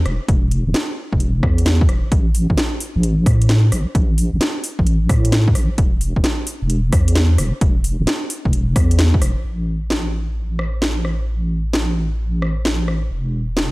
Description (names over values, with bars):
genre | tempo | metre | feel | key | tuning
UK garage, two-step garage | 131 BPM | 4/4 | swing 67% on 16ths | unclear | A4 = 442 Hz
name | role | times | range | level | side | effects
deep soft wobble bass | bass | 0.0-13.7 s | E1 to A2 | -17 LUFS | equal | chorus, tube saturation, sidechain pumping
house drum kit | drums | 0.1-13.7 s | hi-hat, rim click, snare drum | -22 LUFS | equal | overdrive
electronic kick drum | drums | 0.3-9.2 s | none | -17 LUFS | equal | overdrive
room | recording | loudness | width
little or no reverb | dry, gritty hardware recording | -15 LUFS | side -22 dB against mid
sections
0.0-9.4 A section; 9.4-13.7 B section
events
none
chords
none